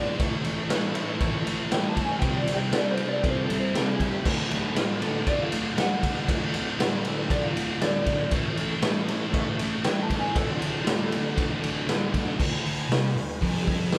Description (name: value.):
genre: garage rock duo or trio.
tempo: 118 BPM.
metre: 4/4.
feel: straight.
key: D mixolydian.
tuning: A4 = 440 Hz.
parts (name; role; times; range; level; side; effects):
electric slide guitar; melody; 0.0-12.4 s; F4 to A5; -34 LUFS; equal; none.
overdriven combo organ; sustained chords; 0.0-12.4 s; C#4 to D5; -41 LUFS; equal; none.
thick fuzz guitar; riff; 0.0-14.0 s; D2 to C4; -31 LUFS; equal; distortion.
raw garage drum kit; drums; 0.2-14.0 s; crash cymbal, hi-hat, kick drum, ride cymbal, snare drum; -29 LUFS; equal; none.
room: moderate studio reverb, RT60 0.8 s.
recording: band playing live in one room.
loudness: -26 LUFS.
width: mono.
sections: 0.0-12.4 A section; 12.4-14.0 B section.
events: none.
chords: 0.2 A; 2.2 C; 4.2 D; 8.3 A; 10.4 D; 12.4 Dm.